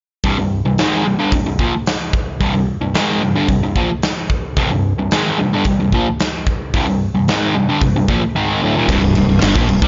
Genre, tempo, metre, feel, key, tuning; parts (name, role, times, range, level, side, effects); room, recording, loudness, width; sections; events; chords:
heavy metal; 111 BPM; 4/4; straight; C minor; A4 = 439 Hz
sludgy distorted guitar; riff; 0.2-9.9 s; C2 to Ab3; -18 LUFS; equal; overdrive
big rock drum kit; drums; 0.2-9.9 s; crash cymbal, hi-hat, kick drum, snare drum; -22 LUFS; equal
fuzz fingered electric bass; bass; 8.9-9.9 s; C1 to C2; -20 LUFS; equal; overdrive
little or no reverb; nothing above 7.5 kHz; -16 LUFS; mono
0.2-8.9 A section
0.2 Cm; 8.9 C5